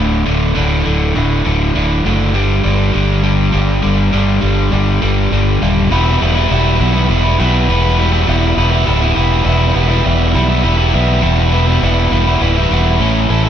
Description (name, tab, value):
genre	post-rock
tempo	101 BPM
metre	3/4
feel	straight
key	unclear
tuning	A4 = 439 Hz
part	overdriven electric guitar	riff	0.0-13.5 s	D2 to A4	-14 LUFS	equal	none
part	growling fingered electric bass	bass	0.0-13.5 s	D1 to B1	-14 LUFS	equal	overdrive
room	light reverb, digital ambience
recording	dark, warm production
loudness	-11 LUFS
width	side -9 dB against mid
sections	0.0-5.9 A section; 5.9-13.5 B section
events	build-up 0.0-5.9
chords	0.0 D; 2.4 G5; 5.9 Em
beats	| 0.57 1.17 1.76 | 2.35 2.95 3.54 | 4.13 4.73 5.32 | 5.91 6.50 7.09 | 7.69 8.28 8.87 | 9.46 10.05 10.64 | 11.23 11.82 12.41 | 13.01